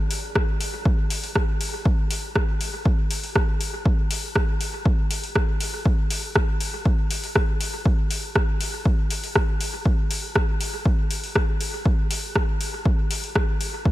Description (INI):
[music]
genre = techno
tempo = 120 BPM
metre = 4/4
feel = straight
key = none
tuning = none
[part]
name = deep house drum kit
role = drums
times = 0.1-13.7 s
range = hi-hat, rim click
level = -27 LUFS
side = equal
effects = overdrive, studio reverb, dub echo
[part]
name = electronic kick drum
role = drums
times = 0.4-13.9 s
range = none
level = -22 LUFS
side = equal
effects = overdrive, studio reverb
[sound]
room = light reverb, digital ambience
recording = none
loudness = -21 LUFS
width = side -16 dB against mid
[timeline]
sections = 0.0-13.9 A section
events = none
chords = none